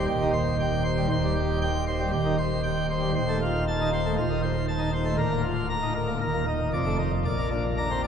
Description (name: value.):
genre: classical, organ toccata.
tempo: 117 BPM.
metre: 4/4.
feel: straight.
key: unclear.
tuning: A4 = 438 Hz.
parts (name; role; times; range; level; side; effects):
pipe organ, plenum; solo; 0.0-8.1 s; D1 to Bb5; -23 LUFS; equal; none.
room: wet cathedral reverb, RT60 6.0 s.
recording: heard from further back in the room.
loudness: -24 LUFS.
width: side -7 dB against mid.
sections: 0.0-8.1 A section.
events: none.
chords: 0.0 Cm/Eb; 3.1 F7/Eb; 5.2 Bb/D; 6.2 Eb5; 6.7 F6; 7.3 Bb.